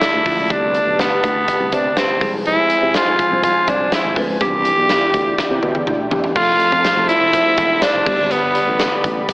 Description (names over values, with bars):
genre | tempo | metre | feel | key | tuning
1980s-style pop | 123 BPM | 4/4 | straight | unclear | A4 = 441 Hz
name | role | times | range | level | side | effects
raspy tenor saxophone | melody | 0.0-9.3 s | B3 to G4 | -16 LUFS | equal | shimmer reverb
bell-like tine electric piano | accompaniment | 0.0-9.3 s | D3 to B4 | -26 LUFS | equal | medium stereo tremolo, shimmer reverb
sweeping resonant pad | sustained chords | 0.0-9.3 s | F3 to B5 | -25 LUFS | equal | chorus, shimmer reverb
big rock drum kit | drums | 0.0-9.3 s | crash cymbal, hi-hat, kick drum, snare drum, tambourine, toms | -22 LUFS | equal | none
sustaining fretless electric bass | bass | 0.1-9.2 s | E1 to C3 | -25 LUFS | equal | none
warm studio violin section | second line | 6.4-9.3 s | B4 to F5 | -27 LUFS | equal | none
room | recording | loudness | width
moderate lush hall reverb, RT60 1.9 s, small room ambience | AM radio sound | -14 LUFS | side -24 dB against mid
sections
0.0-6.4 A section; 6.4-9.3 B section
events
drum fill 5.4-6.4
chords
0.0 Dm; 0.5 Gadd9; 2.2 Fm/C; 4.4 Em7; 6.4 F; 8.1 G